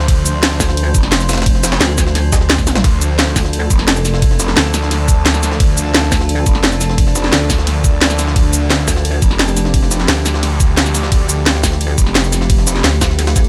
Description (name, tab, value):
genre	dark technical drum and bass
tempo	174 BPM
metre	4/4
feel	straight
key	D minor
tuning	A4 = 440 Hz
part	metallic inharmonic drone	sustained chords	0.0-13.5 s	F3 to C5	-25 LUFS	equal	chorus, built-in reverb, sidechain pumping
part	snarling distorted saw bass	bass	0.0-0.6, 2.8-11.6 s	D2	-18 LUFS	equal	distortion, overdrive, sidechain pumping
part	jungle sampler-style drum kit	drums	0.0-13.5 s	hi-hat, snare drum	-26 LUFS	equal	overdrive, high-pass filter on snare, high-pass filter on hats
part	drum and bass drum kit	drums	0.1-13.4 s	hi-hat, ride cymbal, shaker, snare drum, toms	-19 LUFS	equal	none
part	electronic kick drum	drums	0.1-13.4 s	none	-16 LUFS	equal	none
part	pulsing pluck wobble bass	bass	0.6-13.5 s	F1 to D2	-18 LUFS	equal	chorus
room	digital ambience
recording	none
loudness	-14 LUFS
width	mono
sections	0.0-13.5 A section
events	drum fill 2.7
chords	0.0 Dm